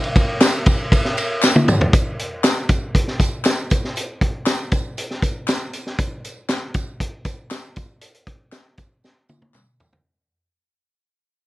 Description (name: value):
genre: soul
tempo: 118 BPM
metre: 4/4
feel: straight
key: none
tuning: none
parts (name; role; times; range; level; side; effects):
- vintage drum kit; drums; 0.0-10.0 s; hi-hat, kick drum, ride cymbal, snare drum, toms; -18 LUFS; equal; none
- tambourine and handclaps; percussion; 0.2-9.9 s; none; -26 LUFS; left 2 dB; none
room: light reverb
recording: dark, warm production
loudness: -18 LUFS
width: side -17 dB against mid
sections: 0.0-1.9 A section; 1.9-10.0 B section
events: drum fill 1.4-1.9, 9.0-10.0; fade-out 1.9-10.0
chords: none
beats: 0.41 0.92 1.43 | 1.93 2.44 2.94 3.45 | 3.96 4.47 4.97 5.48 | 5.99 6.49 7.00 7.51 | 8.02 8.53 9.03 9.54